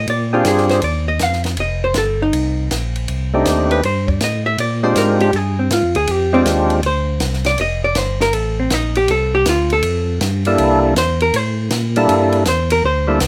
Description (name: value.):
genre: soul jazz organ trio.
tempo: 160 BPM.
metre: 4/4.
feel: swing 66% on 8ths.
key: F mixolydian.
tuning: A4 = 438 Hz.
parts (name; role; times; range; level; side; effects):
archtop guitar, miked and amplified; accompaniment; 0.0-13.3 s; C4 to F5; -20 LUFS; equal; none.
tonewheel organ; bass; 0.0-13.3 s; F1 to Bb2; -22 LUFS; equal; overdrive, chorus vibrato, slow rotary speaker.
compact cocktail drum kit; drums; 0.1-13.3 s; hi-hat, kick drum, ride cymbal, snare drum; -27 LUFS; equal; none.
percussive tonewheel organ; melody; 0.3-0.8, 3.3-6.8, 10.5-13.2 s; G3 to A4; -17 LUFS; equal; slow rotary speaker, overdrive.
room: light reverb.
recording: none.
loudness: -17 LUFS.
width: mono.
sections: 0.0-13.3 A section.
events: hollow-body jazz guitar solo 0.0-13.3.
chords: 0.1 Bb13; 1.6 F13; 4.6 Bb13; 7.6 F69; 10.6 C13.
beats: | 0.08 0.46 0.83 1.20 | 1.58 1.96 2.33 2.71 | 3.08 3.46 3.83 4.21 | 4.58 4.96 5.33 5.71 | 6.08 6.46 6.83 7.21 | 7.59 7.96 8.34 8.71 | 9.09 9.46 9.84 10.21 | 10.59 10.96 11.34 11.71 | 12.09 12.46 12.83 13.21.